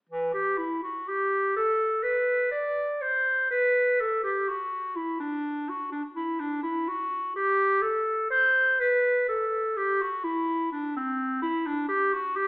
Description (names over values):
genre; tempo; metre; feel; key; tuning
classical, baroque-style fantasia for unaccompanied clarinet; 62 BPM; 3/4; rubato; G major; A4 = 439 Hz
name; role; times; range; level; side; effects
clear clarinet; solo; 0.1-12.5 s; E3 to D5; -24 LUFS; equal; none
room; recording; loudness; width
wet stone room reverb, RT60 1.3 s; heard from further back in the room, AM radio sound; -24 LUFS; side -26 dB against mid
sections
0.1-12.5 A section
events
none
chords
none